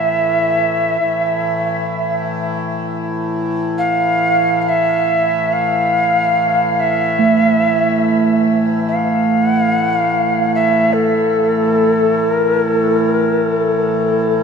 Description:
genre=world meditative, free-time meditation music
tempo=free time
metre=none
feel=none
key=unclear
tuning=A4 = 444 Hz
part: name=mellow Native American-style cedar flute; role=melody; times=0.0-14.4 s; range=A4 to F5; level=-15 LUFS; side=equal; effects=shimmer reverb, ping-pong delay
part: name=hand-pumped harmonium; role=drone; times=0.0-14.4 s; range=A2 to E3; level=-20 LUFS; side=left 3 dB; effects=stereo widening
part: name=quartz singing bowl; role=texture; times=7.2-14.4 s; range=A3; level=-18 LUFS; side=right 5 dB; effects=shimmer reverb
room=wet huge ambient reverb, RT60 4.0 s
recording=dark, warm production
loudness=-13 LUFS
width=side -6 dB against mid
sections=0.0-14.4 A section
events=none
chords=none

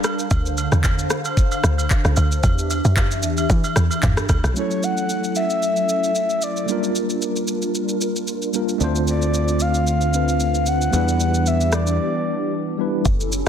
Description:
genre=amapiano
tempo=113 BPM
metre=4/4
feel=swing 55% on 16ths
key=unclear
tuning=A4 = 441 Hz
part: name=hollow soft pad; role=sustained chords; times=0.0-13.5 s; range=D3 to F5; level=-26 LUFS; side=equal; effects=ensemble chorus, sidechain pumping
part: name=smooth R&B drum kit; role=drums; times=0.0-13.5 s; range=handclaps, kick drum, rim click, shaker, toms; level=-22 LUFS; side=equal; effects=none
part: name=agogo bells and woodblock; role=percussion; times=0.0-4.4 s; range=none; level=-30 LUFS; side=right 5 dB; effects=none
part: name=tight log drum bass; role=bass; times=0.3-4.5, 13.1-13.4 s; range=F#1 to E3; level=-19 LUFS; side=equal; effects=none
part: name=bright tine electric piano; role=accompaniment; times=4.5-13.1 s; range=F#3 to C5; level=-24 LUFS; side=equal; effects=medium stereo tremolo
part: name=breathy flute-like synth lead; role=melody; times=4.6-12.5 s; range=C#5 to F#5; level=-23 LUFS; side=left 2 dB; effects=chorus, ping-pong delay
part: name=fingered electric bass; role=bass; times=8.8-12.0 s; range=D2 to E2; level=-20 LUFS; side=equal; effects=none
room=light reverb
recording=dense, heavily limited modern master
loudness=-18 LUFS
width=side -8 dB against mid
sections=0.0-4.6 A section; 4.6-13.1 B section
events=drop 0.0-4.6; break 12.0-13.1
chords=0.3 Dm7; 2.4 Em7; 4.6 F#m7; 6.7 Gm7; 8.8 Dm7; 10.9 Em7

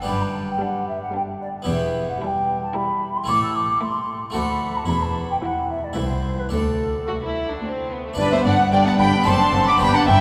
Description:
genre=classical, baroque-style concerto movement with solo episodes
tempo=112 BPM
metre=3/4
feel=straight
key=G major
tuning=A4 = 440 Hz
part: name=mellow wooden flute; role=melody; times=0.0-10.2 s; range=A4 to E6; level=-26 LUFS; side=equal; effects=none
part: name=harpsichord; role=accompaniment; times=0.0-10.2 s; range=C2 to B4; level=-30 LUFS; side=equal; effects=none
part: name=warm chamber cello section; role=bass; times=0.1-10.2 s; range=C2 to A2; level=-30 LUFS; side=equal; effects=none
part: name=warm chamber double bass section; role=bass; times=0.1-10.2 s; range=E1 to D2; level=-31 LUFS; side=equal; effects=none
part: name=warm chamber violin section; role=melody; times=0.6-10.2 s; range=F#4 to D6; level=-26 LUFS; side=equal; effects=none
part: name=rich chamber violin section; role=second line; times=0.6-10.2 s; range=A3 to B5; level=-27 LUFS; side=equal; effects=none
part: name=dark chamber viola section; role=accompaniment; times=0.6-10.2 s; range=E3 to D4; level=-31 LUFS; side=equal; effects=none
room=wet cathedral reverb, RT60 4.9 s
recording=recorded in a church or concert hall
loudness=-21 LUFS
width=mono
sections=0.0-8.2 A section; 8.2-10.2 B section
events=none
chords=0.1 G; 1.7 Em; 3.3 A5; 4.4 D; 4.9 Em; 6.0 C; 6.5 D; 8.2 G; 9.3 D7/F#

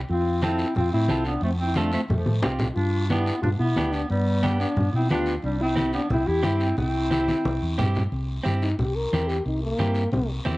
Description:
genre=latin, cumbia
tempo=179 BPM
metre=4/4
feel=straight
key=C major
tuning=A4 = 439 Hz
part: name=hollow-body short-scale fingered electric bass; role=bass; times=0.0-10.6 s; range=C2 to B2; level=-26 LUFS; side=equal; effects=none
part: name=mellow French horn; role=melody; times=0.1-10.3 s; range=A3 to Bb4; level=-27 LUFS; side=left 1 dB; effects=none
part: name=breathy clarinet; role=second line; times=0.1-7.9 s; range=F3 to E4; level=-30 LUFS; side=right 2 dB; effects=none
part: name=congas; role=percussion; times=0.1-10.6 s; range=none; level=-29 LUFS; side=left 1 dB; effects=none
part: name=guiro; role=percussion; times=0.1-10.6 s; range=none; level=-39 LUFS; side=left 2 dB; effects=none
part: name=clean electric guitar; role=accompaniment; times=0.4-10.6 s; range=B3 to A4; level=-31 LUFS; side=right 2 dB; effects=none
room=light reverb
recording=worn, warbling old tape, cassette tape, warbly pitch drift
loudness=-21 LUFS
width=side -20 dB against mid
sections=0.0-8.1 A section; 8.1-10.6 B section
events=drum fill 2.3-2.8, 7.3-8.1; French horn solo 8.1-10.6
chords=0.1 F; 2.8 G7; 5.4 C

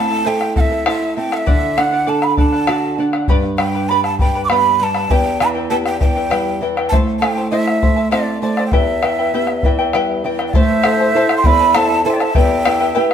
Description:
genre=andean folk, Andean ensemble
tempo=66 BPM (dotted quarters)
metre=6/8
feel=straight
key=unclear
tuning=A4 = 439 Hz
part: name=breathy mellow quena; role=melody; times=0.0-13.1 s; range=D5 to D6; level=-18 LUFS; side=right 2 dB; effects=none
part: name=charango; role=accompaniment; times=0.0-13.1 s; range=E4 to B5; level=-22 LUFS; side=left 4 dB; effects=none
part: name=nylon-string guitar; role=accompaniment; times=0.0-13.1 s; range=E2 to C5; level=-20 LUFS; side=right 3 dB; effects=none
part: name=bombo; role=percussion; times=0.4-13.1 s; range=none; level=-18 LUFS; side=left 1 dB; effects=none
part: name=breathy large quena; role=second line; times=10.5-13.1 s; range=C5 to G5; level=-22 LUFS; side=left 2 dB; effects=none
room=wet stone room reverb, RT60 1.1 s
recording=band playing live in one room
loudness=-13 LUFS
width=side -8 dB against mid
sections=0.0-10.6 A section; 10.6-13.1 B section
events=none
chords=0.0 Am; 1.5 D; 3.3 G; 5.1 Em; 6.9 Am; 8.7 Em; 10.6 Am; 12.4 Em

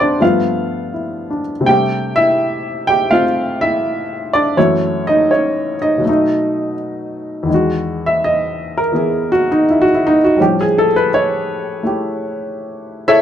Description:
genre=solo jazz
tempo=82 BPM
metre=4/4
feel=swing 68% on 8ths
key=unclear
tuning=A4 = 440 Hz
part: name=warm baby grand piano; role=solo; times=0.0-13.2 s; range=D2 to G5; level=-13 LUFS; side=equal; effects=none
room=light reverb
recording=close, detailed microphones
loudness=-13 LUFS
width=side -10 dB against mid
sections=0.0-7.5 A section; 7.5-13.2 B section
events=grand piano solo 7.5-13.2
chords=0.2 G9; 1.7 C6; 4.6 F#m7; 6.0 B7; 7.5 Emaj9; 10.4 A7b13

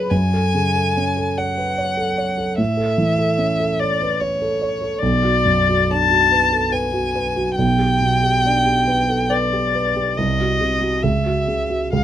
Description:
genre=classical, romantic duo for violin and grand piano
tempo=63-76 BPM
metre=3/4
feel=rubato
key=F# minor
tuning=A4 = 443 Hz
part: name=warm violin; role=melody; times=0.0-12.0 s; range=B4 to A5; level=-19 LUFS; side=left 2 dB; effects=none
part: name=dark concert grand piano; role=accompaniment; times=0.0-12.0 s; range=B1 to C#5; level=-19 LUFS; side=right 2 dB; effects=none
room=light reverb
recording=close, detailed microphones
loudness=-16 LUFS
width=side -11 dB against mid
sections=0.0-12.0 A section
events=none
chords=0.1 F#m; 2.6 A; 5.0 Bm; 7.6 G/B; 10.2 Cdim; 11.0 F#5/C#

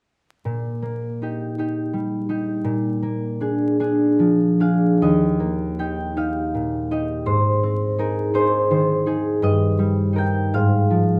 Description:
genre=classical, solo harp piece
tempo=47-57 BPM (dotted quarters)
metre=6/8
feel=rubato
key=Eb major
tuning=A4 = 442 Hz
part: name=concert harp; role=solo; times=0.5-11.2 s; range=Eb2 to G5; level=-21 LUFS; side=equal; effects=none
room=light reverb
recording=close, detailed microphones, vinyl crackle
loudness=-21 LUFS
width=mono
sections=0.5-5.0 A section; 5.0-11.2 B section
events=none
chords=0.5 Eb/Bb; 2.6 Bb7; 5.0 Eb; 7.3 Ab; 9.4 Eb/G; 10.5 Fm/Ab

